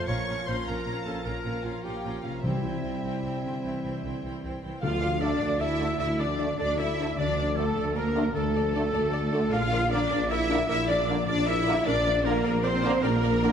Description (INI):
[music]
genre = cinematic, heroic adventure film score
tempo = 102 BPM (dotted quarters)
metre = 12/8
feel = straight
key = D minor from 4.8 s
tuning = A4 = 440 Hz
[part]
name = rich symphonic violin section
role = melody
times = 0.0-13.5 s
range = A4 to Db6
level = -34 LUFS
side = left 1 dB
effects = none
[part]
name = rich studio violin section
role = second line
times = 0.0-13.5 s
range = A4 to Bb5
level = -38 LUFS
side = left 3 dB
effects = none
[part]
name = warm clarinet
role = second line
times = 0.0-4.2 s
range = E4 to Db5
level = -37 LUFS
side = left 2 dB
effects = none
[part]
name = bright symphonic viola section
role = accompaniment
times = 0.0-13.5 s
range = C4 to D5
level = -37 LUFS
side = right 1 dB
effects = none
[part]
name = clear trombone section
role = sustained chords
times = 0.0-13.5 s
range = D3 to C4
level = -36 LUFS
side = right 3 dB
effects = none
[part]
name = concert harp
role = arpeggios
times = 0.0-13.5 s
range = Bb2 to D6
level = -36 LUFS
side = left 9 dB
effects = none
[part]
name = rich symphonic cello section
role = bass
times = 0.1-13.5 s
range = Bb2 to F4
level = -31 LUFS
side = right 2 dB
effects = none
[part]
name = rich symphonic double bass section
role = bass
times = 0.1-13.5 s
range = Bb1 to D2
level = -34 LUFS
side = right 1 dB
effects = none
[part]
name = timpani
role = percussion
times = 2.4-5.4 s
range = C3 to D3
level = -34 LUFS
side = equal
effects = none
[part]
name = hollow concert flute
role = second line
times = 4.8-13.5 s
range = A4 to F5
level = -34 LUFS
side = left 1 dB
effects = none
[part]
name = warm oboe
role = second line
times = 4.8-13.5 s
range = A4 to F5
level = -36 LUFS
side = right 2 dB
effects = none
[part]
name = dark trumpet section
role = stabs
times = 4.8-13.5 s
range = A4 to F5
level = -34 LUFS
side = equal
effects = none
[part]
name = warm tuba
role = bass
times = 4.8-13.5 s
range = Bb1 to D2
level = -33 LUFS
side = right 2 dB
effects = none
[part]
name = mellow French horn section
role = sustained chords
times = 5.2-13.5 s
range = D4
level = -36 LUFS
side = left 5 dB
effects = none
[sound]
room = moderate scoring stage reverb, RT60 1.7 s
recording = none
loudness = -24 LUFS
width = side -8 dB against mid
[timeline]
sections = 0.0-4.8 A section; 4.8-13.5 B section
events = none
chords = 0.1 Bbm; 2.4 C; 4.8 Dm; 9.5 Bb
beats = | 0.08 0.66 1.25 1.84 | 2.44 3.04 3.63 4.23 | 4.83 5.42 6.00 6.59 | 7.18 7.77 8.35 8.94 | 9.53 10.11 10.70 11.28 | 11.86 12.45 13.03